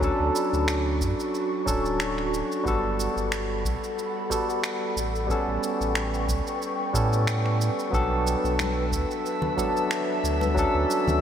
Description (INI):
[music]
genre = sunset chillout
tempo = 91 BPM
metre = 4/4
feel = swing 55% on 16ths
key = D major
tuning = A4 = 440 Hz
[part]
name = barky tine electric piano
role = accompaniment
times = 0.0-11.2 s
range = F#3 to A4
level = -26 LUFS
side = equal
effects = auto-pan, ping-pong delay, shimmer reverb
[part]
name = ethereal airy pad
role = sustained chords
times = 0.0-11.2 s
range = F#4 to C#6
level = -31 LUFS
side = equal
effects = ensemble chorus, built-in reverb, shimmer reverb
[part]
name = warm sub bass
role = bass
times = 0.0-11.2 s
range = D1 to A2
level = -28 LUFS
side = equal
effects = tube saturation
[part]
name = electronic cabasa and finger snaps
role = drums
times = 0.0-11.2 s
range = none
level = -34 LUFS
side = right 1 dB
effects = none
[part]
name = electronic kick drum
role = drums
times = 0.0-10.7 s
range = none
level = -31 LUFS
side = equal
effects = none
[part]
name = drifting glass-harmonics texture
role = texture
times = 8.4-11.2 s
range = E5 to E6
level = -36 LUFS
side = left 2 dB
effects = chorus, built-in reverb, shimmer reverb
[part]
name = congas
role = percussion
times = 8.6-11.2 s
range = none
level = -34 LUFS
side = left 2 dB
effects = none
[sound]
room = wet cathedral reverb, RT60 5.4 s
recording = dreamy mix soaked in reverb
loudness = -23 LUFS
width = side -9 dB against mid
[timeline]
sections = 0.0-11.2 A section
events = none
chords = 0.0 Dmaj7; 2.7 Gmaj9; 5.0 A9; 7.9 Bm7; 10.6 Dmaj7